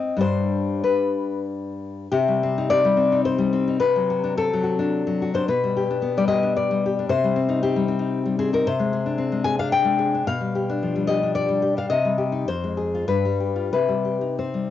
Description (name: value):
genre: romantic piece for solo classical guitar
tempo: 87-116 BPM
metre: 3/4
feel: rubato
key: C minor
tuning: A4 = 441 Hz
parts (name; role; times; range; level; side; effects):
- nylon-string guitar; solo; 0.0-14.7 s; F2 to Ab5; -20 LUFS; left 3 dB; none
room: wet studio reverb, RT60 0.6 s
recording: home recording on cassette, nothing above 7.7 kHz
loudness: -20 LUFS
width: side -11 dB against mid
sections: 0.0-2.1 A section; 2.1-14.7 B section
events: none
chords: 0.2 G; 2.1 Cm; 3.8 D7/C; 5.5 G/B; 7.1 Cm; 8.7 Fm69/C (rootless); 10.3 G7/B; 11.9 Cm; 12.5 Fm; 13.1 G7; 13.7 Cm